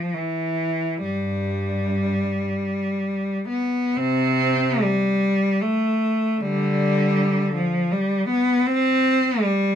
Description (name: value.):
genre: classical, free, expressive piece for unaccompanied cello.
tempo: 52-81 BPM.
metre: 3/4.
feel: rubato.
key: unclear.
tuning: A4 = 439 Hz.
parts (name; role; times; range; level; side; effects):
clear cello; solo; 0.0-9.8 s; G2 to C4; -20 LUFS; equal; none.
room: little or no reverb.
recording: close, detailed microphones.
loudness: -19 LUFS.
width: side -9 dB against mid.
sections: 0.0-4.0 A section; 4.0-9.8 B section.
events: none.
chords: none.